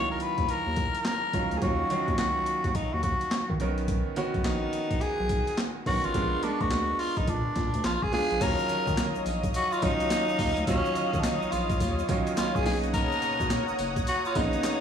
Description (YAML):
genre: R&B, new jack swing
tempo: 106 BPM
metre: 4/4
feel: swing 63% on 16ths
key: Eb minor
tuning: A4 = 440 Hz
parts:
  - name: raspy tenor saxophone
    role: melody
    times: 0.0-14.8 s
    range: Db4 to Cb5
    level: -29 LUFS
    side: left 1 dB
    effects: tape echo, plate reverb
  - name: bright concert grand piano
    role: accompaniment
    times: 0.0-14.8 s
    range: C#3 to F5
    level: -31 LUFS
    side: right 4 dB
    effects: plate reverb
  - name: round analog bass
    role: bass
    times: 0.0-14.6 s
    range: F#1 to Eb3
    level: -32 LUFS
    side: left 1 dB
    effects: none
  - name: boom bap sampler-style drum kit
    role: drums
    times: 0.2-14.8 s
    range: crash cymbal, handclaps, hi-hat, kick drum, snare drum, tambourine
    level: -31 LUFS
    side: equal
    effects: overdrive
  - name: lush unison pad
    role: sustained chords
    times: 8.4-14.8 s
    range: Db5 to Eb6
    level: -32 LUFS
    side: left 2 dB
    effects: chorus, plate reverb
  - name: tube shaker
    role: percussion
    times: 8.4-14.8 s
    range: none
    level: -48 LUFS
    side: left 13 dB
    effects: none
room: moderate studio reverb, RT60 0.5 s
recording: studio reverb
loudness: -25 LUFS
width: side -8 dB against mid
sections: 0.0-8.4 A section; 8.4-14.8 B section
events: none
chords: 0.0 Ebm9; 3.6 Bmaj9; 6.1 Bb7b9; 8.4 Ebm9; 12.7 Bmaj9